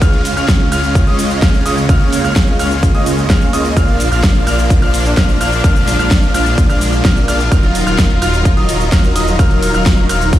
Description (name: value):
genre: EDM, festival progressive house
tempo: 128 BPM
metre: 4/4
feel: straight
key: Eb minor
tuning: A4 = 440 Hz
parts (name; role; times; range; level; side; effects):
- rich studio string section; sustained chords; 0.0-10.4 s; Db3 to F4; -22 LUFS; left 1 dB; sidechain pumping
- bright grand piano; arpeggios; 0.0-10.4 s; Eb6 to F6; -21 LUFS; left 1 dB; sidechain pumping, tape echo
- supersaw chords; riff; 0.0-10.4 s; Gb3 to F5; -18 LUFS; right 1 dB; ensemble chorus, sidechain pumping, tape echo
- wide detuned saw bass; bass; 0.0-10.4 s; Eb1 to Db2; -18 LUFS; equal; chorus, sidechain pumping
- big-room dance drum kit; drums; 0.0-10.4 s; cabasa, hi-hat, ride cymbal, snare drum; -21 LUFS; right 1 dB; none
- electronic kick drum; drums; 0.0-10.4 s; none; -12 LUFS; equal; none
room: light reverb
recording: played on a big sound system in a bare room, large studio reverb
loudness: -10 LUFS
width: side -13 dB against mid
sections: 0.0-10.4 A section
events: none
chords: 0.0 Db; 3.8 Bb; 7.5 Ebmadd9